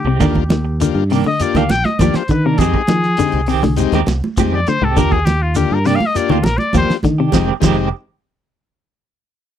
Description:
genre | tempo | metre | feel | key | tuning
afrobeat | 101 BPM | 4/4 | straight | F dorian | A4 = 440 Hz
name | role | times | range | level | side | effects
bright trumpet | melody | 0.0-6.9 s | F4 to G5 | -20 LUFS | left 3 dB | none
fingered electric bass | bass | 0.0-7.9 s | F1 to F3 | -18 LUFS | right 1 dB | none
semi-hollow electric guitar | arpeggios | 0.1-7.8 s | Ab2 to F3 | -20 LUFS | left 8 dB | none
clean electric guitar | stabs | 0.1-7.9 s | Eb3 to G4 | -21 LUFS | right 13 dB | tremolo
overdriven combo organ | accompaniment | 0.2-7.9 s | Ab3 to G4 | -20 LUFS | left 15 dB | none
cloth-damped thuddy drum kit | drums | 0.2-7.8 s | crash cymbal, hi-hat, kick drum, snare drum | -21 LUFS | right 1 dB | none
congas | percussion | 0.2-7.8 s | none | -21 LUFS | right 5 dB | none
shekere | percussion | 0.2-7.8 s | none | -25 LUFS | right 3 dB | none
room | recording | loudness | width
little or no reverb | dry, close 1970s-style studio recording | -13 LUFS | side -10 dB against mid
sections
0.0-7.3 A section; 7.3-9.6 B section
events
trumpet solo 0.0-7.3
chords
0.2 Ebmaj7; 2.6 Fm9; 5.0 Ebmaj7; 7.3 Fm9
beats
| 0.21 0.81 1.40 2.00 | 2.59 3.19 3.78 4.37 | 4.97 5.56 6.15 6.74 | 7.33

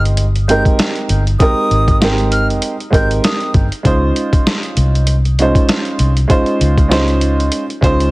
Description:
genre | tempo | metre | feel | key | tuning
hip hop, boom-bap hip-hop | 98 BPM | 4/4 | swing 56% on 16ths | Ab major | A4 = 439 Hz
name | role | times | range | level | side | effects
breathy silver concert flute | melody | 0.0-3.5 s | Eb6 to G6 | -22 LUFS | equal | tape echo
dark upright piano | accompaniment | 0.0-8.1 s | Ab3 to C5 | -16 LUFS | right 2 dB | cassette tape
vintage muted fingered electric bass | bass | 0.0-8.1 s | G1 to Db2 | -14 LUFS | equal | none
boom bap sampler-style drum kit | drums | 0.1-8.1 s | hi-hat, kick drum, snare drum | -15 LUFS | equal | vintage 12-bit sampler grit
room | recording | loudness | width
small room ambience | heavily compressed radio sound | -11 LUFS | side -21 dB against mid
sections
0.0-8.1 A section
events
none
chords
0.0 Abmaj9; 3.9 Dbmaj7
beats
0.18 0.79 | 1.40 2.01 2.63 3.24 | 3.85 4.46 5.08 5.69 | 6.30 6.91 7.52

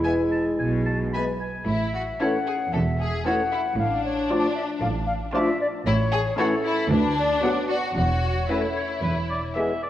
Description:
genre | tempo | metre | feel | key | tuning
cinematic | 114 BPM | 4/4 | straight | A major | A4 = 440 Hz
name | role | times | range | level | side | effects
clear studio violin section | melody | 0.0-9.9 s | E5 to A5 | -38 LUFS | left 3 dB | none
clear oboe | second line | 0.0-9.9 s | B4 to B5 | -33 LUFS | equal | none
mellow clarinet | second line | 0.0-9.7 s | G#3 to E4 | -30 LUFS | equal | none
rich symphonic violin section | second line | 0.0-9.8 s | D4 to E5 | -28 LUFS | left 2 dB | none
dark bassoon | accompaniment | 0.0-9.7 s | E3 to G#3 | -32 LUFS | equal | none
warm studio viola section | accompaniment | 0.0-9.9 s | B3 to A4 | -32 LUFS | equal | none
mellow French horn section | sustained chords | 0.1-9.7 s | G#3 to B4 | -32 LUFS | left 4 dB | none
clear studio cello section | bass | 0.6-9.5 s | D2 to B2 | -28 LUFS | right 1 dB | none
rich studio double bass section | bass | 0.6-9.5 s | E1 to D2 | -29 LUFS | right 2 dB | none
silver concert flute | second line | 1.7-9.8 s | A4 to F#5 | -28 LUFS | left 2 dB | none
room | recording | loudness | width
wet scoring stage reverb, RT60 1.9 s | worn, warbling old tape, cassette tape, warbly pitch drift | -21 LUFS | side -12 dB against mid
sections
0.0-1.7 A section; 1.7-9.9 B section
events
none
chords
0.0 E; 1.7 A; 3.8 Dm/A; 5.9 A; 6.9 Bm/D; 8.0 A/E; 9.0 E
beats
0.04 0.59 1.14 | 1.68 2.21 2.73 3.26 | 3.79 4.31 4.82 5.34 | 5.86 6.38 6.91 7.43 | 7.96 8.49 9.03 9.56

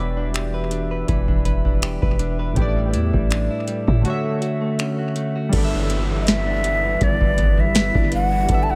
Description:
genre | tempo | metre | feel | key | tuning
contemporary R&B | 81 BPM | 4/4 | swing 54% on 16ths | unclear | A4 = 440 Hz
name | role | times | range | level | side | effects
warm analog keys | accompaniment | 0.0-8.8 s | A2 to E5 | -29 LUFS | equal | chorus, dub echo
deep dark ambient pad | sustained chords | 0.0-8.8 s | G3 to E5 | -35 LUFS | equal | chorus, built-in reverb
direct-recorded clean electric guitar | arpeggios | 0.0-8.8 s | G2 to B4 | -30 LUFS | equal | dub echo
warm 808-style bass | bass | 0.0-8.8 s | E1 to A2 | -25 LUFS | equal | none
booming analog drum machine | drums | 0.3-8.7 s | crash cymbal, finger snaps, hi-hat, kick drum, snare drum | -23 LUFS | equal | none
downlifter | sound effects | 5.5-8.8 s | none | -36 LUFS | equal | none
breathy bright shakuhachi | melody | 6.2-8.8 s | D5 to A5 | -24 LUFS | equal | dub echo
room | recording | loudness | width
light reverb | echo-heavy mix | -20 LUFS | mono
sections
0.0-5.5 A section; 5.5-8.8 B section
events
break 4.0-5.5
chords
0.0 Em7; 2.6 A7sus4; 4.0 Dmaj7; 5.5 G6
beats
0.34 1.08 1.82 | 2.56 3.31 4.05 4.79 | 5.53 6.27 7.01 7.75 | 8.49

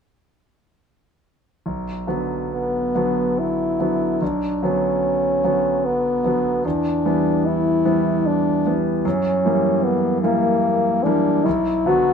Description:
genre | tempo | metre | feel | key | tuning
classical, romantic duo for French horn and grand piano | 74 BPM | 3/4 | rubato | B minor | A4 = 438 Hz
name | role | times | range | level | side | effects
bright concert grand piano | accompaniment | 1.7-12.1 s | B1 to B3 | -21 LUFS | right 1 dB | none
warm French horn | melody | 2.5-12.1 s | A#3 to F#4 | -20 LUFS | left 1 dB | none
room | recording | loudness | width
light reverb | minimal, uncompressed stereo recording | -18 LUFS | side -6 dB against mid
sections
1.6-12.1 A section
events
none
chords
1.6 Bm; 6.6 Em7; 9.0 F#7b9; 11.5 Bm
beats
| 1.65 2.50 3.38 | 4.21 5.03 5.84 | 6.65 7.45 8.25 | 9.05 9.83 10.63 | 11.46

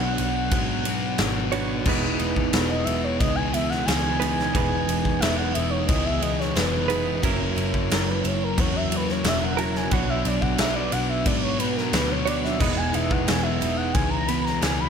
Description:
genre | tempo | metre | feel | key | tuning
rock, shoegaze and dream pop | 89 BPM | 4/4 | straight | E lydian | A4 = 440 Hz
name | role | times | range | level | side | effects
reedy FM lead | melody | 0.0-14.9 s | A#4 to B5 | -29 LUFS | equal | chorus, tremolo, slapback echo
direct-recorded clean electric guitar | riff | 0.0-14.9 s | E2 to C#5 | -29 LUFS | right 10 dB | reverse reverb
thick fuzz guitar | riff | 0.0-14.9 s | E2 to B3 | -28 LUFS | left 12 dB | distortion, wide subtle chorus
vintage muted picked electric bass | bass | 0.0-14.9 s | E1 to G#2 | -29 LUFS | equal | none
huge arena drum kit | drums | 0.2-14.8 s | crash cymbal, kick drum, ride cymbal, snare drum | -26 LUFS | equal | none
picked twelve-string acoustic guitar | arpeggios | 1.9-14.9 s | A#3 to G#4 | -34 LUFS | right 8 dB | analog chorus, slapback echo
room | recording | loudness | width
light reverb | none | -21 LUFS | side -7 dB against mid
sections
0.0-14.9 A section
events
none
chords
0.0 Bmadd9; 1.9 Emaj7; 7.2 F#7; 9.9 Bmadd9; 12.6 Emaj7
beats
0.52 1.20 | 1.87 2.54 3.21 3.88 | 4.55 5.22 5.89 6.57 | 7.24 7.91 8.58 9.25 | 9.92 10.59 11.27 11.94 | 12.61 13.28 13.95 14.63

